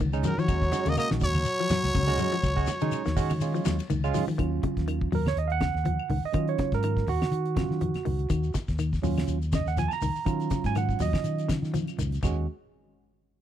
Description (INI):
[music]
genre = afrobeat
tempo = 123 BPM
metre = 4/4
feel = swing 55% on 16ths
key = Eb minor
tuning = A4 = 439 Hz
[part]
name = semi-hollow electric guitar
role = arpeggios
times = 0.0-12.3 s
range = Db3 to Gb3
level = -33 LUFS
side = left 8 dB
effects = none
[part]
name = fingered electric bass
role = bass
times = 0.0-12.5 s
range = Bb1 to Eb3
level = -29 LUFS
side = left 1 dB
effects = none
[part]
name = damped 70s drum kit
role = drums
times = 0.0-12.4 s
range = crash cymbal, hi-hat, kick drum, ride cymbal, snare drum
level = -32 LUFS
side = equal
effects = none
[part]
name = barky tine electric piano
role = accompaniment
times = 0.1-12.5 s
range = Gb3 to Bb5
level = -31 LUFS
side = right 11 dB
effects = none
[part]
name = claves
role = percussion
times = 0.1-12.4 s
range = none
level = -44 LUFS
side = left 18 dB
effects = none
[part]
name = shekere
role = percussion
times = 0.1-4.4, 8.3-12.4 s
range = none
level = -40 LUFS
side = left 8 dB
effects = none
[part]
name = congas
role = percussion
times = 0.2-12.4 s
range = none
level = -33 LUFS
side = right 2 dB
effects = none
[part]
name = growling trumpet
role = melody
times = 0.3-3.9 s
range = Bb4 to Eb5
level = -30 LUFS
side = left 1 dB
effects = none
[part]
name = warm trombone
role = second line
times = 0.3-3.9 s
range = Gb3 to Bb3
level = -34 LUFS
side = right 2 dB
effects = none
[sound]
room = small room ambience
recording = dry, close 1970s-style studio recording, faint mains hum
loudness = -24 LUFS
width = side -11 dB against mid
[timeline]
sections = 0.0-4.4 A section; 4.4-12.2 B section; 12.2-13.4 C section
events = tine electric piano solo 4.4-12.2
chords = 0.0 Ebm7; 4.4 Ebm9; 12.2 Ebm7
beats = 0.00 | 0.49 0.97 1.46 1.95 | 2.44 2.92 3.41 3.90 | 4.39 4.88 5.37 5.86 | 6.34 6.83 7.32 7.81 | 8.30 8.79 9.28 9.77 | 10.26 10.75 11.24 11.73 | 12.22